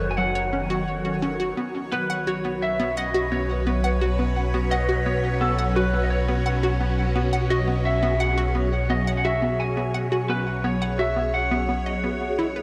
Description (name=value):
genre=ambient, sequencer-driven space music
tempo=86 BPM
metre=4/4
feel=straight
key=unclear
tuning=A4 = 440 Hz
part: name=lightly driven lead guitar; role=melody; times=0.0-12.3 s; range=A4 to G#5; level=-30 LUFS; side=equal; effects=tape echo
part: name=phased string machine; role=sustained chords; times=0.0-12.6 s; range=D#3 to C#5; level=-30 LUFS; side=equal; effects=ensemble chorus, phaser
part: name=fat analog bass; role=bass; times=0.0-12.6 s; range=F#1 to B1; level=-28 LUFS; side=equal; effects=none
part: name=bubbling stepped-filter texture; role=texture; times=0.0-12.6 s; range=C#5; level=-40 LUFS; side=equal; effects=chorus, built-in reverb
part: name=hollow square pluck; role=riff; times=0.2-12.6 s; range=F#3 to F#5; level=-30 LUFS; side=equal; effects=subtle chorus, tape echo
room=wet spring reverb, RT60 2.7 s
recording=echo-heavy mix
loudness=-24 LUFS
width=mono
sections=0.0-12.6 A section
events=none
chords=0.0 F#m; 1.6 Bsus2